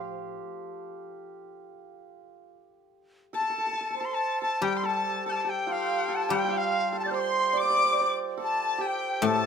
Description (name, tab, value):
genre	chinese traditional, Chinese chamber ensemble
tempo	71 BPM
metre	4/4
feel	rubato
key	A jue mode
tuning	A4 = 440 Hz
part	hammered dulcimer	second line	0.0-9.5 s	F4 to D5	-32 LUFS	right 4 dB	none
part	guzheng	accompaniment	0.0-9.5 s	A2 to G3	-31 LUFS	left 5 dB	none
part	rich erhu	second line	3.3-9.5 s	F5 to A6	-32 LUFS	left 6 dB	none
part	bright reedy dizi	melody	3.4-9.5 s	F5 to A6	-28 LUFS	equal	none
room	light reverb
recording	close, detailed microphones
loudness	-25 LUFS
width	side -7 dB against mid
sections	0.0-9.5 A section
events	none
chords	none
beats	0.37 1.22 2.07 | 2.92 3.77 4.62 5.47 | 6.31 7.15 7.99 8.81